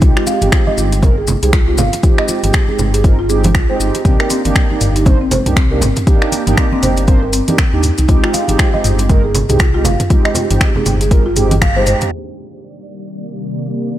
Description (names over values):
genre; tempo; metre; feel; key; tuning
afro house; 119 BPM; 4/4; swing 59% on 16ths; C minor; A4 = 440 Hz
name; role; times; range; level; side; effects
buzzing marimba with soft mallets; arpeggios; 0.0-12.0 s; C4 to F5; -19 LUFS; equal; sidechain pumping, tape echo
mellow synth brass; stabs; 0.0-14.0 s; Ab3 to C5; -20 LUFS; right 4 dB; chorus, sidechain pumping, tape echo
dark detuned saw bass; bass; 0.0-11.9 s; G1 to Eb2; -16 LUFS; equal; tube saturation, sidechain pumping
deep house drum kit; drums; 0.0-12.1 s; finger snaps, hi-hat, toms; -19 LUFS; equal; none
electronic kick drum; drums; 0.0-11.7 s; none; -12 LUFS; equal; none
congas; percussion; 0.0-12.1 s; none; -21 LUFS; right 2 dB; none
maracas; percussion; 0.0-12.1 s; none; -26 LUFS; left 5 dB; none
ethereal airy pad; sustained chords; 12.8-14.0 s; C3 to D5; -22 LUFS; left 1 dB; ensemble chorus, built-in reverb, sidechain pumping
room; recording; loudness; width
digital ambience; low-pass filter; -11 LUFS; side -13 dB against mid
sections
0.0-12.1 A section; 12.1-14.0 B section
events
drum fill 11.6-12.1; band accent 11.6; filter sweep 12.1-14.0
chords
0.0 Fm7; 4.1 Cm9; 8.1 Fm7; 12.1 Cm9